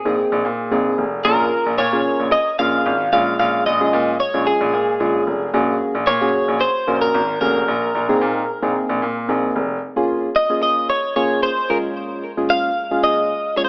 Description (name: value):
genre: dance-pop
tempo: 112 BPM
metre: 4/4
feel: straight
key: Bb minor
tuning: A4 = 440 Hz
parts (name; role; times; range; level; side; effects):
- twelve-string electric guitar; melody; 0.0-13.7 s; Ab4 to F5; -21 LUFS; equal; digital delay
- soft electric-piano-like synth keys; accompaniment; 0.0-13.7 s; Bb2 to Bb4; -24 LUFS; equal; chorus
- clear baby grand piano; bass; 0.1-9.8 s; F1 to Bb2; -24 LUFS; equal; none
room: moderate lush hall reverb, RT60 3.0 s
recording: rough home demo mix, AM radio sound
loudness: -19 LUFS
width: mono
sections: 0.0-9.8 A section; 9.8-13.7 B section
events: build-up 9.8-13.7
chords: 0.0 Abadd9/Bb; 1.3 Bbm7; 3.1 Db/Bb; 5.5 Gbadd9/Bb; 7.7 Abadd9/Bb; 9.8 Bbm7